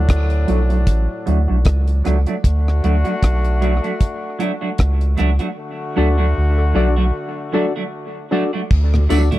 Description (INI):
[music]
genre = dub reggae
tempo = 77 BPM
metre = 4/4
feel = swing 56% on 16ths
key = D major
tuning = A4 = 440 Hz
[part]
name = warm horn section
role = second line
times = 0.0-8.3 s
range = A2 to F#4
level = -26 LUFS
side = left 3 dB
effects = dub echo
[part]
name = soft dub sub bass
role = bass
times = 0.0-9.3 s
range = A1 to D2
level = -15 LUFS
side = equal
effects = none
[part]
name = deep reggae drum kit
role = drums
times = 0.1-9.4 s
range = crash cymbal, hi-hat, kick drum, rim click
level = -18 LUFS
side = equal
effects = none
[part]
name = semi-hollow electric guitar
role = accompaniment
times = 0.5-9.4 s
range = F#3 to F#4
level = -23 LUFS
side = right 2 dB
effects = wide subtle chorus, low-pass filter, dub echo
[part]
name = percussive organ stab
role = stabs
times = 6.0-9.3 s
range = D4 to D5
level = -22 LUFS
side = left 3 dB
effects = chorus, low-pass filter, dub echo
[part]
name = mellow tonewheel organ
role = accompaniment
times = 8.9-9.4 s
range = D2 to D4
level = -22 LUFS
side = left 1 dB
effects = slow rotary speaker
[part]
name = tambourine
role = percussion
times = 9.1-9.3 s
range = none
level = -39 LUFS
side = right 3 dB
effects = dub echo
[sound]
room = small room ambience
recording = dry, close 1970s-style studio recording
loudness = -15 LUFS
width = side -16 dB against mid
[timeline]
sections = 0.0-8.7 A section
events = break 0.0-8.7; filter sweep 0.0-8.7; part muted 5.6-8.7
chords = 0.0 D